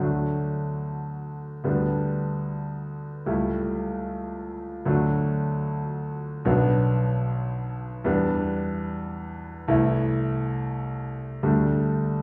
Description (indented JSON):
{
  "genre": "classical, romantic character piece for solo piano",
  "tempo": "111 BPM",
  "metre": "3/4",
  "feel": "rubato",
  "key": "D major",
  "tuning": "A4 = 441 Hz",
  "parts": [
    { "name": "clear grand piano", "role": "solo", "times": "0.0-12.2 s", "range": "B1 to E4", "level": "-26 LUFS", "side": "equal", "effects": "none" }
  ],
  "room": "wet recital hall reverb, RT60 1.4 s",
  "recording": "heard from further back in the room",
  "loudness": "-26 LUFS",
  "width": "mono",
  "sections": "0.0-12.2 A section",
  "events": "none",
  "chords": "0.0 D; 1.7 G/D; 3.3 A7/C#; 4.9 D; 6.5 Bm; 8.1 Em7; 9.7 Am/C; 11.4 Dsus4",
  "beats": "| 0.02 0.57 1.12 | 1.66 2.20 2.74 | 3.28 3.81 4.34 | 4.88 5.41 5.95 | 6.49 7.01 7.54 | 8.07 8.61 9.16 | 9.71 10.27 10.84 | 11.45 12.07"
}